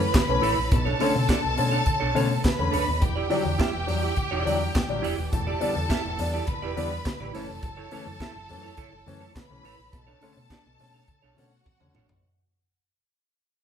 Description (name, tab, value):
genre	disco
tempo	104 BPM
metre	4/4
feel	straight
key	unclear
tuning	A4 = 440 Hz
part	clear studio string section	second line	0.0-12.2 s	F#4 to B5	-30 LUFS	left 1 dB	none
part	semi-hollow electric guitar	accompaniment	0.0-12.1 s	D4 to E5	-32 LUFS	right 7 dB	none
part	hollow-body short-scale fingered electric bass	bass	0.0-12.2 s	D#1 to B2	-30 LUFS	equal	none
part	tight funk drum kit	drums	0.1-12.2 s	handclaps, hi-hat, kick drum, snare drum, toms	-27 LUFS	equal	none
part	congas	percussion	0.1-11.9 s	none	-37 LUFS	left 1 dB	none
part	warm concert grand piano	accompaniment	0.3-12.2 s	A2 to D4	-30 LUFS	left 3 dB	none
room	moderate large studio reverb, RT60 1.3 s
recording	band playing live in one room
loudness	-22 LUFS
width	side -8 dB against mid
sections	0.0-12.2 A section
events	fade-out 0.0-12.2; drum fill 11.7-12.2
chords	0.0 F#m7 (rootless); 0.7 Bm9; 3.0 Em7; 5.3 A7sus4/E; 7.3 F#m7; 9.9 Bm9